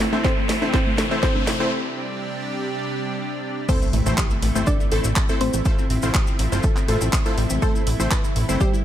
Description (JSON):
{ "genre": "progressive house", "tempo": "122 BPM", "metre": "4/4", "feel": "straight", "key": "A minor", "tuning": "A4 = 440 Hz", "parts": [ { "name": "wide unison pluck", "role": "melody", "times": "0.0-8.8 s", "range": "G3 to D5", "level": "-28 LUFS", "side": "equal", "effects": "sidechain pumping, ping-pong delay" }, { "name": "lush unison pad", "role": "sustained chords", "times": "0.0-8.8 s", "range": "C3 to G4", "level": "-29 LUFS", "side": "right 1 dB", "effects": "chorus, sidechain pumping" }, { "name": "wide unison pluck", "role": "arpeggios", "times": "0.0-8.8 s", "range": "A3 to C5", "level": "-29 LUFS", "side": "left 1 dB", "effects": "sidechain pumping, ping-pong delay" }, { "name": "plucky analog bass", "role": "bass", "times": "0.0-8.6 s", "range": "G1 to A1", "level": "-24 LUFS", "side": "equal", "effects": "sidechain pumping, high-pass filter" }, { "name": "house drum kit", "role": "drums", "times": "0.0-8.5 s", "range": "crash cymbal, handclaps, hi-hat, snare drum", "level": "-28 LUFS", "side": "equal", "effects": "none" }, { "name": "riser and impact", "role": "sound effects", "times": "0.0-5.7 s", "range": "none", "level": "-30 LUFS", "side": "equal", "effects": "none" }, { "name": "supersaw stab", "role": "stabs", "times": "0.1-8.6 s", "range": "A3 to C5", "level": "-28 LUFS", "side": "left 1 dB", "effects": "sidechain pumping, ping-pong delay" }, { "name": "congas", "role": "percussion", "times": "0.1-1.4 s", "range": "none", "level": "-33 LUFS", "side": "left 4 dB", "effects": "none" }, { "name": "electronic kick drum", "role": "drums", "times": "0.2-8.7 s", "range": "none", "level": "-22 LUFS", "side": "equal", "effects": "none" }, { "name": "cabasa", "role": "percussion", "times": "3.7-8.8 s", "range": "none", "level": "-34 LUFS", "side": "left 4 dB", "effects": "none" } ], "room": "light reverb", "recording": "dark, warm production", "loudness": "-19 LUFS", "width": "side -11 dB against mid", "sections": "0.0-3.7 A section; 3.7-8.8 B section", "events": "build-up 0.0-3.7; drum fill 0.0-1.7; riser 0.0-1.7; filter sweep on synth pluck 0.0-3.7; break 1.7-3.7; drop 3.7-8.8; impact 3.7-5.7", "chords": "0.0 Am; 1.7 Gsus4; 3.7 Am; 5.7 Fmaj7" }